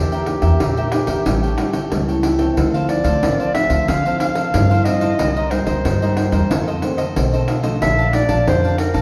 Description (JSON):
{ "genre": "samba and choro", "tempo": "92 BPM", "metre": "4/4", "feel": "straight", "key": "unclear", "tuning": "A4 = 440 Hz", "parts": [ { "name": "breathy clarinet", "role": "melody", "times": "0.0-9.0 s", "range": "G4 to F5", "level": "-24 LUFS", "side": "equal", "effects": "none" }, { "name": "cavaquinho", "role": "accompaniment", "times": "0.0-9.0 s", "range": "D4 to A5", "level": "-29 LUFS", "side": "equal", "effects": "none" }, { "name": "nylon-string guitar", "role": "accompaniment", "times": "0.0-9.0 s", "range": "F2 to G4", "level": "-25 LUFS", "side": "equal", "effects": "none" }, { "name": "upright bass", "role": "bass", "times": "0.0-9.0 s", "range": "A1 to D3", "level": "-22 LUFS", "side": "equal", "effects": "none" }, { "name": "pandeiro", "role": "percussion", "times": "0.1-9.0 s", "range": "none", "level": "-24 LUFS", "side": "equal", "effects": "none" } ], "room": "wet recital hall reverb, RT60 1.3 s", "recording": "recorded in a church or concert hall", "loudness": "-18 LUFS", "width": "mono", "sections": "0.0-9.0 A section", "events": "none", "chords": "0.0 Em7b5; 1.3 A7; 2.6 Dm9; 5.2 Cm7; 6.5 F7; 7.8 Bbmaj7", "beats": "0.61 1.26 1.92 | 2.57 3.23 3.88 4.54 | 5.20 5.85 6.50 7.16 | 7.82 8.47" }